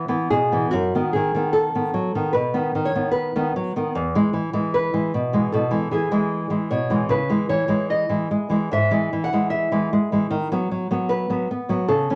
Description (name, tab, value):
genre	romantic duo for nylon-string guitar and classical guitar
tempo	75 BPM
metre	4/4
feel	rubato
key	E major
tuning	A4 = 438 Hz
part	nylon-string guitar	melody	0.0-12.2 s	E4 to F#5	-26 LUFS	equal	none
part	nylon-string guitar	accompaniment	0.0-12.2 s	E2 to C#4	-24 LUFS	equal	none
room	moderate club reverb, RT60 0.6 s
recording	none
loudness	-22 LUFS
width	mono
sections	0.0-12.2 A section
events	none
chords	0.0 E; 0.7 B7/F#; 3.9 E; 7.1 C#m (rootless); 10.3 B5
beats	| 0.71 1.52 2.33 3.13 | 3.93 4.73 5.53 6.32 | 7.11 7.89 8.70 9.50 | 10.29 11.08 11.87